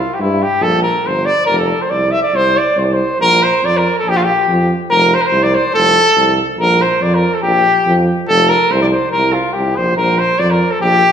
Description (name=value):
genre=balkan folk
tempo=142 BPM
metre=2/4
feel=swing 55% on 16ths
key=unclear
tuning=A4 = 442 Hz
part: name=warm trumpet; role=melody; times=0.0-11.1 s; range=E4 to E5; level=-12 LUFS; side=equal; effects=none
part: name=warm tuba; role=bass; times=0.2-11.0 s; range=F1 to G2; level=-17 LUFS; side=equal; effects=none
room=wet recital hall reverb, RT60 1.6 s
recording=recorded in a church or concert hall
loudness=-11 LUFS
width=side -8 dB against mid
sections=0.0-3.2 A section; 3.2-10.0 B section; 10.0-11.1 B section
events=none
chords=0.0 N.C.; 0.6 Gmadd9; 1.5 F5; 2.3 Csus2; 3.2 Bb5; 4.9 F; 6.6 Bb5; 8.3 F5; 9.1 Bbsus2; 10.0 Bb5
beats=0.20 | 0.63 1.06 | 1.49 1.92 | 2.35 2.77 | 3.20 3.63 | 4.06 4.48 | 4.91 5.33 | 5.75 6.18 | 6.60 7.02 | 7.45 7.87 | 8.29 8.71 | 9.13 9.55 | 9.97 10.39 | 10.81